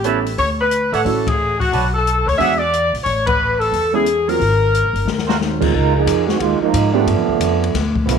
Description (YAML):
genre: jazz, big band swing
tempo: 180 BPM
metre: 4/4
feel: swing 64% on 8ths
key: unclear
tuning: A4 = 438 Hz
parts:
  - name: bright saxophone section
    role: melody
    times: 0.0-5.4 s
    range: F#4 to E5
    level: -17 LUFS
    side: left 2 dB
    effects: none
  - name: warm baby grand piano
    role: accompaniment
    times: 0.0-7.1 s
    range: C#3 to A4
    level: -22 LUFS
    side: right 10 dB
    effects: none
  - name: clear trumpet section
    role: stabs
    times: 0.0-2.5, 5.3-5.4 s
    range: F#4 to A5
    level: -24 LUFS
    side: right 9 dB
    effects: none
  - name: upright bass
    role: bass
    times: 0.0-8.2 s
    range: G1 to A2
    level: -21 LUFS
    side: left 1 dB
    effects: none
  - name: open jazz drum kit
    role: drums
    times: 0.0-8.2 s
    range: crash cymbal, hi-hat, kick drum, ride cymbal, snare drum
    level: -24 LUFS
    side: left 5 dB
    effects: none
  - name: dark trombone section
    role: second line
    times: 5.4-8.2 s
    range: D3 to Bb4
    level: -17 LUFS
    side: right 9 dB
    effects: none
room: moderate echo chamber reverb, RT60 1.3 s, small room ambience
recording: 1960s-style stereo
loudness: -14 LUFS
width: side -6 dB against mid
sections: 0.0-5.7 A section; 5.7-8.2 B section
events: band accent 1.2, 3.2; drum fill 5.1-5.4; trombone section solo 5.7-8.2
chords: 0.4 Dmaj9; 1.7 Bm9; 2.4 E9; 3.1 Amaj7sus2; 4.4 G#13; 5.7 Db69; 7.1 G9 (rootless)